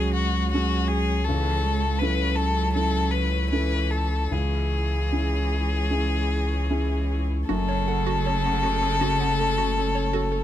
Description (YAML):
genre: neoclassical piano and strings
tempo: 75-81 BPM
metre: 4/4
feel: rubato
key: F# minor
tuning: A4 = 440 Hz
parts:
  - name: rich violin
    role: melody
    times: 0.0-10.4 s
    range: F#4 to B4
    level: -27 LUFS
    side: left 4 dB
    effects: none
  - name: rich cello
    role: second line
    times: 0.0-10.4 s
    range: C#3 to G#3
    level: -32 LUFS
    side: right 6 dB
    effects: none
  - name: felt-muted upright piano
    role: accompaniment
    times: 0.0-10.4 s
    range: C#2 to A4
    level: -29 LUFS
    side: equal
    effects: none
  - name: warm chamber string section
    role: sustained chords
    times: 0.0-10.4 s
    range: G#3 to C#5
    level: -36 LUFS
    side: right 1 dB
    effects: none
  - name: saturated sub bass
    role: bass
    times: 0.0-10.4 s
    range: F#1 to C#2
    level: -26 LUFS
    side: equal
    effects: none
  - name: hollow square pluck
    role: arpeggios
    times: 7.5-10.4 s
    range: F#4 to F#5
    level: -34 LUFS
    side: right 10 dB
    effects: chorus, slapback echo
room: little or no reverb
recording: close, detailed microphones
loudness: -22 LUFS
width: side -11 dB against mid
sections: 0.0-7.5 A section; 7.5-10.4 B section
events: none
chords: 0.0 C#sus4; 1.3 A/C#; 4.3 C#m; 7.5 F#m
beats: 0.53 | 1.27 2.02 2.77 3.53 | 4.32 5.11 5.91 6.70 | 7.49 8.25 9.01 9.76